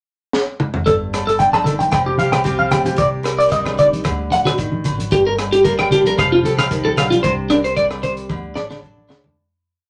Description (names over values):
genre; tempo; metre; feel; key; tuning
highlife guitar band; 113 BPM; 4/4; swing 54% on 16ths; G minor; A4 = 441 Hz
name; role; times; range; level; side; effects
crunchy breakbeat drum kit; drums; 0.3-9.4 s; hi-hat, kick drum, rim click, snare drum, toms; -26 LUFS; equal; none
picked steel-string acoustic guitar; accompaniment; 0.9-9.3 s; G2 to Bb4; -27 LUFS; equal; none
electric guitar at the edge of break-up; arpeggios; 0.9-9.2 s; D4 to A5; -18 LUFS; equal; phaser
upright bass; bass; 0.9-9.3 s; F1 to D2; -29 LUFS; equal; none
agogo bells; percussion; 1.1-9.2 s; none; -33 LUFS; equal; none
congas; percussion; 1.5-9.4 s; none; -26 LUFS; equal; none
room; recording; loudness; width
moderate studio ambience, RT60 0.5 s; none; -17 LUFS; mono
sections
0.0-0.9 pickup bar; 0.9-9.4 groove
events
drum fill 0.3-0.9, 8.3-9.4; fade-out 7.2-9.4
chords
0.0 N.C.; 0.9 Gsus2; 1.9 Fsus2; 3.0 Cmadd9; 4.1 D; 5.1 Gm; 6.2 Fadd9; 7.2 Csus2; 8.3 D